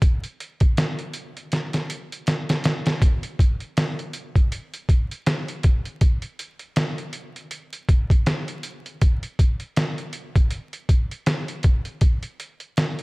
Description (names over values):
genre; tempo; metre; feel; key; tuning
hip hop; 80 BPM; 4/4; swing 57% on 16ths; none; none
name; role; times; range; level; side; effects
trip hop sampler-style drum kit; drums; 0.0-13.0 s; hi-hat, kick drum, snare drum; -20 LUFS; equal; none
room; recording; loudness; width
little or no reverb; vinyl crackle; -20 LUFS; side -26 dB against mid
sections
0.0-3.0 A section; 3.0-13.0 B section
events
drum fill 1.5-3.0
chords
none